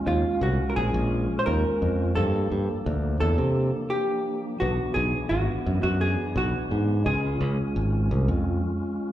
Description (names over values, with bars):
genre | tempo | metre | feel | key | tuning
progressive instrumental, progressive | 171 BPM (eighths) | 7/8 | straight | unclear | A4 = 441 Hz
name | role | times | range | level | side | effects
percussive tonewheel organ | accompaniment | 0.0-9.1 s | Fb3 to F4 | -31 LUFS | equal | fast rotary speaker, slapback echo
vintage hollow-body jazz guitar | melody | 0.1-8.4 s | F4 to C5 | -28 LUFS | right 1 dB | slapback echo
modern bright fingered electric bass | bass | 0.1-8.6 s | Ab1 to C3 | -24 LUFS | equal | none
room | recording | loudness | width
light reverb | live gig heard through the venue's PA, club reverb | -23 LUFS | side -12 dB against mid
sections
0.0-9.1 A section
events
none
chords
0.0 Ebsus2; 2.2 Gmadd9; 4.6 Bm; 7.1 Db